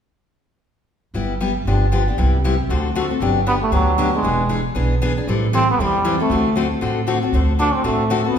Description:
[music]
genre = acoustic string swing (jazz manouche)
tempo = 233 BPM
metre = 4/4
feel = swing 57% on 8ths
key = G major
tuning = A4 = 440 Hz
[part]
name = picked steel-string acoustic guitar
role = accompaniment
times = 1.1-8.4 s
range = C3 to A4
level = -20 LUFS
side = left 4 dB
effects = none
[part]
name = upright bass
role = bass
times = 1.1-8.4 s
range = E1 to E2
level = -20 LUFS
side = right 1 dB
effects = none
[part]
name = trombone with metal mute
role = melody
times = 3.5-8.4 s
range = F#3 to D4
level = -19 LUFS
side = right 2 dB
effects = none
[sound]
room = wet recital hall reverb, RT60 1.5 s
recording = recorded in a church or concert hall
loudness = -16 LUFS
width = side -8 dB against mid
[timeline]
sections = 1.1-3.2 A section; 3.2-8.4 B section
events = none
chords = 1.1 G6; 1.7 G7; 2.2 Cmaj7; 2.7 D7; 3.2 Gmaj7; 4.2 E7; 5.3 Am7; 6.3 D7

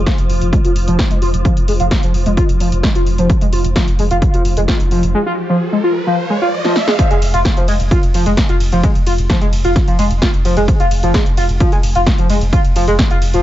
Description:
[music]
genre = driving peak-time techno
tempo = 130 BPM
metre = 4/4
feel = straight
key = F minor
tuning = A4 = 440 Hz
[part]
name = saturated sub bass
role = bass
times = 0.0-13.4 s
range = F1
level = -17 LUFS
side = equal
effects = tube saturation, sidechain pumping, low-pass filter
[part]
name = swarming drone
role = drone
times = 0.0-5.1 s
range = F3 to F4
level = -25 LUFS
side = equal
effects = built-in reverb, sidechain pumping
[part]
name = overdriven synth lead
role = riff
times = 0.1-13.4 s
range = F3 to F4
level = -17 LUFS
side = equal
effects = wide subtle chorus, cassette tape, sidechain pumping, dub echo
[part]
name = electronic kick drum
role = drums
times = 0.1-13.1 s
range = none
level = -14 LUFS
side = equal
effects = overdrive
[part]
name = techno drum kit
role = drums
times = 0.1-13.4 s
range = hi-hat, ride cymbal, snare drum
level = -22 LUFS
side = equal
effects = overdrive
[part]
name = riser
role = sound effects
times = 4.5-7.0 s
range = none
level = -24 LUFS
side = right 2 dB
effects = none
[sound]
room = digital ambience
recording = nothing above 7.7 kHz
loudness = -12 LUFS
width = side -13 dB against mid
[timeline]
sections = 0.0-7.0 A section; 7.0-13.4 B section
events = filter sweep on analog synth lead 0.0-7.0; riser 4.5-7.0; drum fill 6.6-7.0; drop 7.0-13.4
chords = none

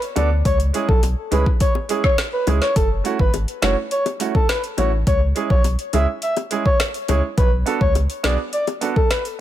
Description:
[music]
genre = dancehall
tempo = 104 BPM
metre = 4/4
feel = straight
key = unclear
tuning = A4 = 440 Hz
[part]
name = afro-pop drum kit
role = drums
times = 0.0-9.4 s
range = hi-hat, kick drum, rim click, snare drum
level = -20 LUFS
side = equal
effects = overdrive
[part]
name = breathy flute-like synth lead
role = melody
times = 0.2-9.2 s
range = A4 to E5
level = -22 LUFS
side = equal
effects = chorus, ping-pong delay
[part]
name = warm grand piano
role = accompaniment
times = 0.2-8.9 s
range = G#3 to A4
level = -26 LUFS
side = right 7 dB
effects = none
[part]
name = saturated sub bass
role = bass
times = 0.2-8.4 s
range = F#1 to D2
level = -20 LUFS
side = equal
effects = none
[part]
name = bongos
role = percussion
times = 0.2-8.8 s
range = none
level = -28 LUFS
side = left 8 dB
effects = none
[sound]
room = digital ambience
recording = none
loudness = -17 LUFS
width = side -12 dB against mid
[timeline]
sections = 0.0-9.4 A section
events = none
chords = 0.5 C#m; 2.8 F#m7; 5.1 C#m; 7.4 Bm

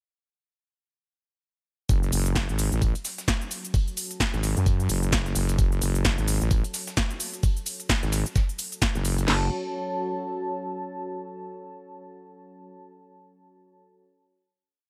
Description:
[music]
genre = bass house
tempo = 130 BPM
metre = 4/4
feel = swing 59% on 16ths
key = F# minor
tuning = A4 = 440 Hz
[part]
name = deep dark ambient pad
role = sustained chords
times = 3.1-9.5 s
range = F#4 to A5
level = -38 LUFS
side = equal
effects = chorus, built-in reverb, sidechain pumping
[part]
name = wobble bass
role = bass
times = 1.9-9.5 s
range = F#1 to F#2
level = -27 LUFS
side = equal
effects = chorus, overdrive, sidechain pumping
[part]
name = big-room dance drum kit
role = drums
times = 1.9-9.3 s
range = hi-hat, shaker, snare drum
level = -31 LUFS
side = equal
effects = none
[part]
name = dusty soul sampler-style drum kit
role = drums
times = 1.9-9.3 s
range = hi-hat, snare drum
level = -42 LUFS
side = equal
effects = high-pass filter on hats, high-pass filter on snare
[part]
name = garage drum kit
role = drums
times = 1.9-9.4 s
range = crash cymbal, kick drum, snare drum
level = -27 LUFS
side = equal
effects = none
[sound]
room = little or no reverb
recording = none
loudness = -26 LUFS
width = mono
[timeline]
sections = 1.9-9.3 drop; 9.3-11.1 final chord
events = drop 1.9-9.3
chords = 1.9 F#m

